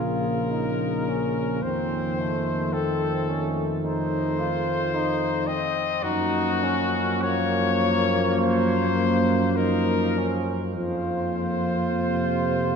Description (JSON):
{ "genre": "classical, hymn-like piece for brass band", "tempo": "47-55 BPM", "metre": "4/4", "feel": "rubato", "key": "unclear", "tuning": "A4 = 439 Hz", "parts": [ { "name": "clear cornet", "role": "melody", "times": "0.0-12.8 s", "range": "Gb4 to Eb5", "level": "-27 LUFS", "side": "left 5 dB", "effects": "none" }, { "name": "mellow flugelhorn", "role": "second line", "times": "0.0-12.8 s", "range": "A3 to F4", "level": "-29 LUFS", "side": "right 4 dB", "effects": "none" }, { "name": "mellow euphonium", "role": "accompaniment", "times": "0.0-12.8 s", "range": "A3 to Bb3", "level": "-30 LUFS", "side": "equal", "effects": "none" }, { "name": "mellow trombone", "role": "accompaniment", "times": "0.0-12.8 s", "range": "C3 to F3", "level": "-30 LUFS", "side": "right 1 dB", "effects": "none" }, { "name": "mellow tuba", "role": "bass", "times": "0.0-12.8 s", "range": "Bb1 to Gb2", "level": "-28 LUFS", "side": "equal", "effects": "none" } ], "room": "wet cathedral reverb, RT60 5.0 s", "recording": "heard from further back in the room", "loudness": "-22 LUFS", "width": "side -6 dB against mid", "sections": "0.0-12.8 A section", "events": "none", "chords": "0.0 Bbm; 1.6 F7; 6.0 Gbmaj7; 10.8 Fsus4", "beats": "0.52 | 1.64 2.74 3.84 4.94 | 6.04 7.25 8.42 9.57 | 10.77 11.99" }